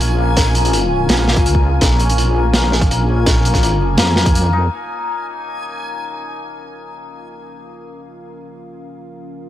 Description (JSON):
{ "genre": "half-time drum and bass", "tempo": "166 BPM", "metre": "4/4", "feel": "half-time", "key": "Bb minor", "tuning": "A4 = 442 Hz", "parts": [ { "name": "dark analog pad", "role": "sustained chords", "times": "0.0-9.5 s", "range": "Db4 to Ab5", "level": "-26 LUFS", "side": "right 1 dB", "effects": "chorus, sidechain pumping" }, { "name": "santur", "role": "arpeggios", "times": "0.0-8.6 s", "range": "F3 to F4", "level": "-22 LUFS", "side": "left 6 dB", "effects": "analog delay" }, { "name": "deep soft wobble bass", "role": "bass", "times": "0.0-4.7 s", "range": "Bb1 to F2", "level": "-16 LUFS", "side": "equal", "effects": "chorus" }, { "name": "crunchy breakbeat drum kit", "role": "drums", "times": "0.0-4.4 s", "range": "hi-hat, snare drum", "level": "-18 LUFS", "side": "right 1 dB", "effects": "low-pass filter on hats, low-pass filter on snare, low-pass filter on room" }, { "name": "backwards swelling texture", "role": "texture", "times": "0.0-4.7 s", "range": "Ab5", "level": "-29 LUFS", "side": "equal", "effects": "built-in reverb" }, { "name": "electronic kick drum", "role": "drums", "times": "0.4-4.3 s", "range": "none", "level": "-16 LUFS", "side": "equal", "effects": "none" } ], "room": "small room ambience", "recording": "dry, gritty hardware recording", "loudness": "-13 LUFS", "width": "side -12 dB against mid", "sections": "0.0-4.7 A section; 4.7-9.5 B section", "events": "drop 0.0-4.7; kick drops out 4.3-4.7; filter sweep on analog synth pad 4.7-9.5", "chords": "0.0 Bbm" }